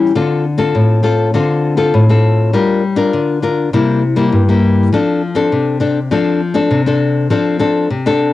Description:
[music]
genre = samba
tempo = 101 BPM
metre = 4/4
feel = straight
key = F major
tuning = A4 = 440 Hz
[part]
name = nylon-string guitar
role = solo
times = 0.0-8.3 s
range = G2 to Bb4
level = -11 LUFS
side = left 2 dB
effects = cassette tape
[sound]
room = moderate studio reverb, RT60 0.5 s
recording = home recording on cassette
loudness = -11 LUFS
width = side -15 dB against mid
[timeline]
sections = 0.0-8.3 A section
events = none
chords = 0.2 Dm7; 2.5 Gm7; 3.7 C7; 4.9 F6

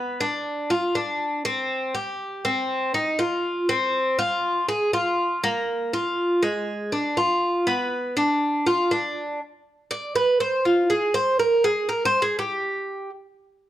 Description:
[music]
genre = latin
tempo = 121 BPM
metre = 4/4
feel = straight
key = unclear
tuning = A4 = 440 Hz
[part]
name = Cuban tres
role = solo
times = 0.0-13.1 s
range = Ab3 to D5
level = -21 LUFS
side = equal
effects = none
[sound]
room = moderate large studio reverb, RT60 1.1 s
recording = dark, warm production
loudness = -21 LUFS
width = side -13 dB against mid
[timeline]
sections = 0.0-9.4 A section; 9.4-13.7 B section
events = Cuban tres solo 9.4-13.7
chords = none

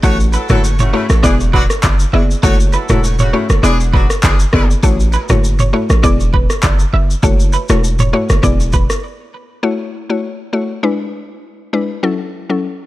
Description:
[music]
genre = afrobeats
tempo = 100 BPM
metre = 4/4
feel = swing 55% on 16ths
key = A major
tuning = A4 = 440 Hz
[part]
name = warm horn section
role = second line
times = 0.0-4.7 s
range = C#3 to C#5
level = -21 LUFS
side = equal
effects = digital delay
[part]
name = mallet-like synth pluck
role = accompaniment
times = 0.0-12.7 s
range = F#3 to D5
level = -18 LUFS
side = left 3 dB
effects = chorus
[part]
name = electric guitar at the edge of break-up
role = riff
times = 0.0-8.9 s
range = G#4 to E5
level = -23 LUFS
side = right 5 dB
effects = lush chorus, digital delay
[part]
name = hard-hitting 808-style bass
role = bass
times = 0.0-8.9 s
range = E1 to A1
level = -14 LUFS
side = equal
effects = none
[part]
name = afro-pop drum kit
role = drums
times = 0.0-9.0 s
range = handclaps, kick drum, rim click, shaker, toms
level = -15 LUFS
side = equal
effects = overdrive
[sound]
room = little or no reverb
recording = none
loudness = -11 LUFS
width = side -16 dB against mid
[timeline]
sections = 0.0-9.6 A section; 9.6-12.9 B section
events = break 9.0-9.6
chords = 0.0 A6; 1.2 E7; 2.4 F#m7; 3.6 E7; 4.8 A6; 6.0 E7; 7.2 F#m7; 8.4 E7; 9.6 A6; 10.8 E7; 12.0 F#m7

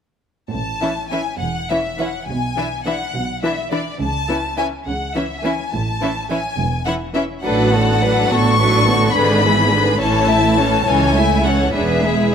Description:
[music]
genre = quick classical-period movement for symphony orchestra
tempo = 70 BPM (dotted quarters)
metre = 6/8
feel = rubato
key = A major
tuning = A4 = 440 Hz
[part]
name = rich chamber violin section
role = melody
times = 0.5-12.3 s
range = D5 to C#6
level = -21 LUFS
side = left 4 dB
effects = none
[part]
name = dark studio double bass section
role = bass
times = 0.5-12.3 s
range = E1 to C#2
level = -23 LUFS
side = right 3 dB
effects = none
[part]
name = warm chamber cello section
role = bass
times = 0.5-12.3 s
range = C#2 to C#3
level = -23 LUFS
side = right 3 dB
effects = none
[part]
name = rich chamber violin section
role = second line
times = 0.8-12.3 s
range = E4 to E5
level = -22 LUFS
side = left 3 dB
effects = none
[part]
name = rich chamber viola section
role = accompaniment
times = 0.8-12.3 s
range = D3 to E4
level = -21 LUFS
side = right 1 dB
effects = none
[sound]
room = moderate scoring stage reverb, RT60 1.6 s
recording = none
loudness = -15 LUFS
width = side -7 dB against mid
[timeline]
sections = 0.5-12.3 A section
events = none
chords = 0.5 A; 2.3 E7/B; 4.0 A/C#; 5.7 A; 7.4 Bm7/A; 9.2 E7/G#; 10.0 A; 10.9 A/C#; 11.7 E7

